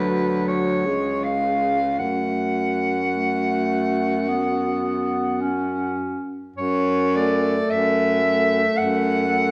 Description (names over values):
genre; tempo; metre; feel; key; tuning
classical, lyrical piece for single-reed quartet; 53 BPM; 4/4; rubato; F# minor; A4 = 440 Hz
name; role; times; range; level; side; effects
clear soprano saxophone; melody; 0.0-9.5 s; B4 to F#5; -26 LUFS; equal; none
warm alto saxophone; second line; 0.0-9.5 s; F#4 to A4; -30 LUFS; equal; none
warm clarinet; accompaniment; 0.0-9.5 s; F#3 to C#4; -29 LUFS; equal; none
warm baritone saxophone; bass; 0.0-9.5 s; C#2 to F#2; -27 LUFS; equal; none
room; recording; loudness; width
wet recital hall reverb, RT60 1.4 s; none; -22 LUFS; mono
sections
0.0-6.6 A section; 6.6-9.5 B section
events
none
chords
0.0 D6; 0.9 C#; 2.0 F#m